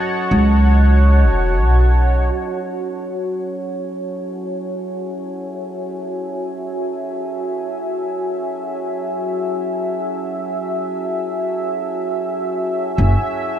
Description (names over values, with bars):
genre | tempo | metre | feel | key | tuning
ambient dub | free time | none | none | F# dorian | A4 = 440 Hz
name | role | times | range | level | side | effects
deep dark ambient pad | sustained chords | 0.0-13.6 s | F#4 to A5 | -21 LUFS | equal | chorus, built-in reverb
upright bass | bass | 0.3-2.3, 13.0-13.1 s | E1 to C#2 | -12 LUFS | equal | none
room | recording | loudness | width
light reverb, studio reverb | dark, warm production | -17 LUFS | side -10 dB against mid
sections
0.0-2.3 A section; 2.3-13.0 B section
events
none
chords
0.0 F#m7; 13.0 F#7(no3)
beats
free time